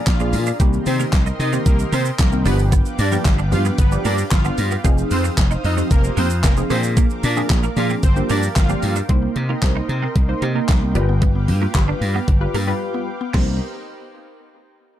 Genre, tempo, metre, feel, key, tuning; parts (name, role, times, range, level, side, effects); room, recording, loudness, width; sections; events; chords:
dance-pop; 113 BPM; 4/4; straight; C minor; A4 = 439 Hz
lush unison pad; sustained chords; 0.0-13.6 s; Eb4 to Eb6; -31 LUFS; equal; chorus, sidechain pumping
soft supersaw; melody; 0.1-8.9 s; Bb3 to F5; -26 LUFS; equal; sidechain pumping, tape echo
slap bass; bass; 0.1-13.6 s; F1 to C3; -20 LUFS; equal; sidechain pumping
pop drum kit; drums; 0.1-13.5 s; crash cymbal, handclaps, hi-hat, kick drum, shaker, snare drum; -19 LUFS; equal; overdrive
funky polysynth comp; accompaniment; 0.2-13.6 s; Eb3 to C5; -25 LUFS; equal; chorus, sidechain pumping
twelve-string electric guitar; riff; 0.2-13.5 s; Bb3 to F4; -29 LUFS; right 8 dB; ensemble chorus
mallet-like synth pluck; arpeggios; 9.1-13.6 s; G3 to G4; -32 LUFS; left 4 dB; chorus, sidechain pumping, tape echo
little or no reverb; dark, warm production; -16 LUFS; side -12 dB against mid
0.0-9.1 A section; 9.1-13.3 B section; 13.3-15.0 C section
drop 0.0-9.1; break 12.8-13.3
0.0 Bb7; 0.6 Cm7; 2.5 G7; 4.8 Fm7; 6.7 Bb7; 8.0 Gm7; 9.1 Cm7; 11.0 G7; 13.3 Cm7